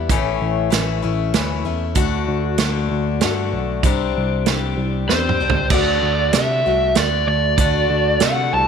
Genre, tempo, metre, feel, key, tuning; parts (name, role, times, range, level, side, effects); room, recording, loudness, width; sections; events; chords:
folk rock and heartland rock; 96 BPM; 3/4; straight; A4 = 439 Hz
picked acoustic archtop guitar; accompaniment; 0.0-8.7 s; A2 to G4; -22 LUFS; left 11 dB
bell-like tine electric piano; bass; 0.0-8.7 s; A1 to C3; -22 LUFS; right 1 dB; phaser
natural country drum kit; drums; 0.1-8.4 s; crash cymbal, hi-hat, kick drum, snare drum, toms; -21 LUFS; right 4 dB
lead guitar through a small cranked amp; melody; 5.1-8.7 s; C5 to A5; -18 LUFS; right 2 dB; overdrive
light reverb, studio reverb; 1960s-style stereo; -16 LUFS; side -7 dB against mid
0.0-5.7 A section; 5.7-8.7 B section
drum fill 5.1-5.7
0.1 A; 2.0 D; 3.8 Csus2; 5.7 D